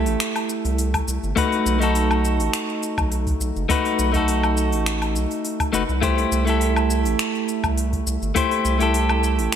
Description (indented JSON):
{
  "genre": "sunset chillout",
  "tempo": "103 BPM",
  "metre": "4/4",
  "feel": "straight",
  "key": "unclear",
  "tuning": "A4 = 441 Hz",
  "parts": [
    { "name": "clean electric guitar", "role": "accompaniment", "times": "0.0-9.6 s", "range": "A3 to C5", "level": "-22 LUFS", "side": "moving between left 6 dB and right 6 dB", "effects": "auto-pan, ping-pong delay" },
    { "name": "round analog bass", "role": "bass", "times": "0.0-9.5 s", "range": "F#1 to C2", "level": "-22 LUFS", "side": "right 1 dB", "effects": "none" },
    { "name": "deep house drum kit", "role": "drums", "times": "0.1-9.6 s", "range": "finger snaps, hi-hat, shaker, woodblock", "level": "-28 LUFS", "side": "left 2 dB", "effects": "small room ambience, gated reverb" },
    { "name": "electronic kick drum", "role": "drums", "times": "0.9-8.5 s", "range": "none", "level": "-26 LUFS", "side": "right 1 dB", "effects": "small room ambience" }
  ],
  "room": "moderate lush hall reverb, RT60 2.5 s",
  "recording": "bright 1980s-style digital production",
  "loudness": "-19 LUFS",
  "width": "side -9 dB against mid",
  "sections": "0.0-9.6 A section",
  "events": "none",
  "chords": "0.0 C6; 1.4 B7; 6.0 C6"
}